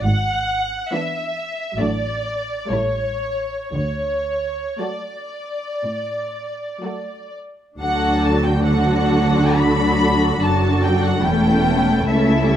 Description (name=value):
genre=classical, slow romantic movement for string orchestra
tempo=55-75 BPM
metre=4/4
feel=rubato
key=D major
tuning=A4 = 440 Hz
part: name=rich symphonic violin section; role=melody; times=0.0-12.6 s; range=C#5 to B5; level=-23 LUFS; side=equal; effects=none
part: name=warm symphonic cello section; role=bass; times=0.0-12.6 s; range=C#2 to D3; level=-23 LUFS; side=right 1 dB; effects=none
part: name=rich studio double bass section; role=bass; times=0.1-12.6 s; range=E1 to D2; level=-22 LUFS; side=right 2 dB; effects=none
part: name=rich symphonic violin section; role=second line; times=0.9-12.6 s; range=D4 to B4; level=-25 LUFS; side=left 1 dB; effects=none
part: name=warm symphonic viola section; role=accompaniment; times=0.9-12.6 s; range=E3 to D4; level=-21 LUFS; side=left 1 dB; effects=none
room=light reverb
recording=close, detailed microphones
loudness=-17 LUFS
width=side -10 dB against mid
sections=0.0-7.8 A section; 7.8-12.6 B section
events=none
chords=0.0 E7/G#; 1.8 D/A; 2.7 A7; 3.7 D; 11.2 A7/E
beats=| 0.05 0.92 1.79 2.70 | 3.73 4.81 5.84 6.84 | 7.81 8.66 9.57 10.42 | 11.25 12.08